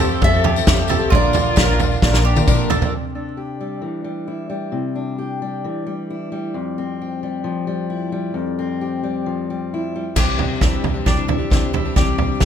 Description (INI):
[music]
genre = indie folk with a building arrangement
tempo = 133 BPM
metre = 4/4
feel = straight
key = C mixolydian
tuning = A4 = 440 Hz
[part]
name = nylon-string guitar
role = melody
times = 0.0-2.4 s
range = C5 to E5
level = -24 LUFS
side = equal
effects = none
[part]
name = warm cello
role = second line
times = 0.0-2.9 s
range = D4 to A4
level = -27 LUFS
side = left 5 dB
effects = none
[part]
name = clear baby grand piano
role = accompaniment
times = 0.0-2.9 s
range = F1 to D5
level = -28 LUFS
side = right 7 dB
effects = none
[part]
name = picked plugged-in twelve-string acoustic guitar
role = accompaniment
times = 0.0-2.9, 10.2-12.4 s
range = Bb2 to Bb4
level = -24 LUFS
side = left 7 dB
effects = none
[part]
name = hand-pumped harmonium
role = sustained chords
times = 0.0-2.9 s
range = D3 to G4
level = -30 LUFS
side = equal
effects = none
[part]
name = bowl-back mandolin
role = arpeggios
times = 0.0-2.9, 10.2-12.4 s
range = D4 to Bb4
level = -26 LUFS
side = right 4 dB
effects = analog delay
[part]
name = upright bass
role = bass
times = 0.0-2.9, 10.2-12.4 s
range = Bb1 to Bb2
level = -22 LUFS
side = equal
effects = none
[part]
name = natural country drum kit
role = drums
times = 0.0-2.9, 10.2-12.4 s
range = crash cymbal, kick drum, snare drum, toms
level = -17 LUFS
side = right 1 dB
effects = none
[part]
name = tambourine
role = percussion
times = 0.1-2.9 s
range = none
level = -31 LUFS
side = left 10 dB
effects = none
[part]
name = fingerpicked steel-string acoustic guitar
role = accompaniment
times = 2.9-12.4 s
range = F2 to G4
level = -24 LUFS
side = left 3 dB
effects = none
[sound]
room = light reverb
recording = none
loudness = -17 LUFS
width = side -8 dB against mid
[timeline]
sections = 0.0-2.9 A section; 2.9-10.2 B section; 10.2-12.4 C section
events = drum fill 2.0-2.9, 10.2-12.4; build-up 10.2-12.4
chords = 0.0 Fadd9; 1.1 Bb; 2.9 Cadd9; 6.5 Fsus2; 10.2 Cadd9